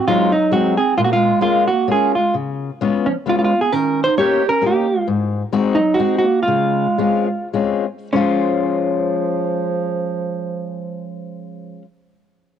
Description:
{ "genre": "musette waltz", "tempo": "97-135 BPM", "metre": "3/4", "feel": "rubato", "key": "Db major", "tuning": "A4 = 440 Hz", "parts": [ { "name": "hollow-body jazz guitar", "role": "melody", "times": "0.0-11.8 s", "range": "Db4 to Db5", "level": "-18 LUFS", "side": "right 1 dB", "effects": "plate reverb" }, { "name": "dark clarinet", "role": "second line", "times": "0.0-11.8 s", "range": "F3 to G4", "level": "-22 LUFS", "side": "right 8 dB", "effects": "cassette tape, plate reverb" }, { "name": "fingerpicked steel-string acoustic guitar", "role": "accompaniment", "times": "0.1-11.8 s", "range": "Ab2 to C5", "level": "-20 LUFS", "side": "left 6 dB", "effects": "cassette tape, plate reverb" } ], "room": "wet booth ambience, RT60 0.2 s", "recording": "home recording on cassette", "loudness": "-15 LUFS", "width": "side -9 dB against mid", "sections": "0.0-8.1 A section; 8.1-11.8 B section", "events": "slowing down 5.1-8.1", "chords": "0.0 Ab7; 1.0 Bbm7; 2.3 Db7; 3.7 Eb7; 5.1 Ab7; 6.5 Dbmaj7" }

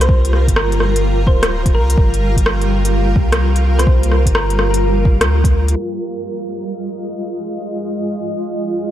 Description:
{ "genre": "future garage", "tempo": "127 BPM", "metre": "4/4", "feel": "swing 65% on 16ths", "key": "F dorian", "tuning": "A4 = 439 Hz", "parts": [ { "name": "thumb-piano-like synth pluck", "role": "melody", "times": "0.0-4.6 s", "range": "Bb4 to C5", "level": "-25 LUFS", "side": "equal", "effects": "chorus, analog delay" }, { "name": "granular cloud pad", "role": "sustained chords", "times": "0.0-8.9 s", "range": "G3 to Eb5", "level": "-20 LUFS", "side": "equal", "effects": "built-in reverb, sidechain pumping" }, { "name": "warm sub bass", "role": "bass", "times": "0.0-5.8 s", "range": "D1 to D2", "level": "-16 LUFS", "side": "equal", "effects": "sidechain pumping" }, { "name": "organic electronic drum kit", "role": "drums", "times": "0.0-8.6 s", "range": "hi-hat, rim click", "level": "-21 LUFS", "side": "equal", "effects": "low-pass filter on hats, low-pass filter on snare, low-pass filter on room" }, { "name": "electronic kick drum", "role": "drums", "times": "0.1-5.5 s", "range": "none", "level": "-15 LUFS", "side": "equal", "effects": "none" } ], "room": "light reverb", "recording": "low-pass filter", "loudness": "-14 LUFS", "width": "side -12 dB against mid", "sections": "0.0-5.8 A section; 5.8-8.9 B section", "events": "filter sweep 5.8-8.9", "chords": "0.0 Gm7; 5.8 Fm7" }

